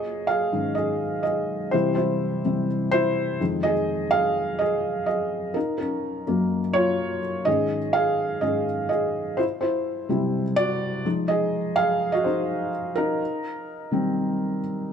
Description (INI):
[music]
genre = pop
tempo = 126 BPM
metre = 4/4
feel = straight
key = unclear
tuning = A4 = 440 Hz
[part]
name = felt-muted upright piano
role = solo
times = 0.0-14.9 s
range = F2 to F5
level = -22 LUFS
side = equal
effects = none
[sound]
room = moderate plate reverb, RT60 2.7 s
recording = none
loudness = -22 LUFS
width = side -7 dB against mid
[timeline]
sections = 0.0-14.9 A section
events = felt piano solo 0.0-14.9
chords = 0.0 Absus4; 1.7 C; 3.4 Fm7; 5.6 Ebmadd9; 7.5 Absus4; 9.4 C; 11.0 Fm7; 13.2 Eb6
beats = 0.29 0.77 1.25 | 1.73 2.20 2.68 3.16 | 3.64 4.12 4.59 5.07 | 5.55 6.03 6.51 6.99 | 7.46 7.94 8.42 8.90 | 9.38 9.85 10.33 10.81 | 11.29 11.77 12.24 12.72 | 13.20 13.68 14.16 14.63